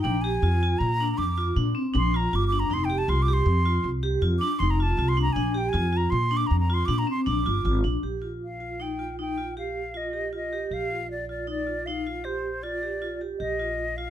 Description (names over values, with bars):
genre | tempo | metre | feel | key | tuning
progressive instrumental, progressive | 158 BPM | 7/4 | straight | unclear | A4 = 440 Hz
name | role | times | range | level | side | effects
breathy concert flute | melody | 0.0-14.1 s | C5 to D6 | -29 LUFS | right 1 dB | plate reverb
vibraphone with hard mallets | arpeggios | 0.0-14.1 s | C4 to G4 | -29 LUFS | equal | none
upright bass | bass | 0.0-14.1 s | F1 to Bb2 | -26 LUFS | equal | none
room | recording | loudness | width
light reverb | close, detailed microphones | -23 LUFS | side -11 dB against mid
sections
0.0-8.0 A section; 8.0-14.1 B section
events
flute solo 0.0-8.0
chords
0.1 Bb; 2.7 F5; 5.4 Bb; 8.0 Ebadd9/Bb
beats
| 0.05 0.43 0.81 1.19 1.57 1.95 2.33 | 2.71 3.09 3.47 3.85 4.23 4.61 4.99 | 5.37 5.75 6.12 6.50 6.88 7.26 7.65 | 8.03 8.41 8.79 9.18 9.56 9.94 10.33 | 10.71 11.09 11.48 11.86 12.24 12.63 13.01 | 13.40 13.78